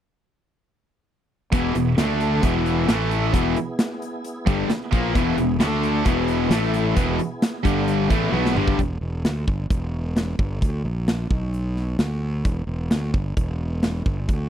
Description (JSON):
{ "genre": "classic rock", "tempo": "132 BPM", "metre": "4/4", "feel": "straight", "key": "unclear", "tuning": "A4 = 441 Hz", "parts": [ { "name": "tonewheel organ", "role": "sustained chords", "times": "1.5-8.8 s", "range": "G3 to A4", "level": "-32 LUFS", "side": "right 2 dB", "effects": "none" }, { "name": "distorted electric guitar", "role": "riff", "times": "1.5-8.8 s", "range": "E2 to D4", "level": "-24 LUFS", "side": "left 12 dB", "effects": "distortion" }, { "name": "tight distorted guitar", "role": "riff", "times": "1.5-8.8 s", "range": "E2 to D4", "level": "-25 LUFS", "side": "right 13 dB", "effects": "distortion" }, { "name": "fuzz fingered electric bass", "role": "bass", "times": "1.5-14.5 s", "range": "E1 to D2", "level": "-25 LUFS", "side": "equal", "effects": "overdrive" }, { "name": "big rock drum kit", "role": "drums", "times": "1.5-14.4 s", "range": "hi-hat, kick drum, snare drum, toms", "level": "-23 LUFS", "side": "equal", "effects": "none" } ], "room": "light reverb", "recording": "dry, close 1970s-style studio recording", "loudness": "-20 LUFS", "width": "side -10 dB against mid", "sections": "1.5-8.8 A section; 8.8-14.5 B section", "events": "drum fill 8.3-8.8", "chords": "1.5 E; 2.0 D5; 2.4 E; 2.9 A5; 3.3 E; 5.6 D5; 6.1 E; 6.5 A5; 7.0 E; 7.6 G5; 8.1 E; 8.8 Em7; 10.8 N.C.; 12.4 Em7" }